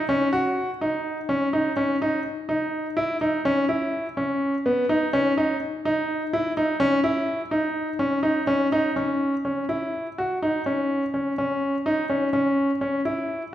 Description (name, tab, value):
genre	contemporary instrumental, contemporary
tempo	250 BPM (eighths)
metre	7/8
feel	straight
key	unclear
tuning	A4 = 441 Hz
part	bright grand piano	solo	0.0-13.4 s	B3 to F#4	-22 LUFS	equal	none
room	wet recital hall reverb, RT60 1.5 s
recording	heard from further back in the room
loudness	-22 LUFS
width	side -12 dB against mid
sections	0.0-9.0 A section; 9.0-13.5 B section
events	none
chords	none